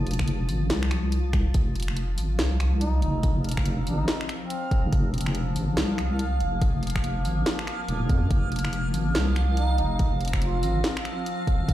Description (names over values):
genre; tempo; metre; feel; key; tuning
deep dubstep; 142 BPM; 4/4; swing 61% on 16ths, half-time; F minor; A4 = 444 Hz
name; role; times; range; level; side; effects
granular cloud pad; sustained chords; 0.0-11.7 s; F3 to F4; -34 LUFS; left 2 dB; built-in reverb
deep soft wobble bass; bass; 0.0-11.7 s; Eb1 to F2; -25 LUFS; equal; chorus
garage drum kit; drums; 0.1-11.7 s; finger snaps, hi-hat, snare drum; -31 LUFS; equal; none
electronic kick drum; drums; 0.2-11.7 s; none; -24 LUFS; equal; overdrive
backwards swelling texture; texture; 1.5-11.7 s; F5; -34 LUFS; right 4 dB; built-in reverb
mellow duduk; melody; 2.8-4.8, 9.6-10.8 s; C4 to F4; -35 LUFS; equal; dub echo
room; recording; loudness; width
light reverb; played on a big sound system in a bare room, large studio reverb; -23 LUFS; side -13 dB against mid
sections
0.0-11.7 A section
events
none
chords
0.0 F5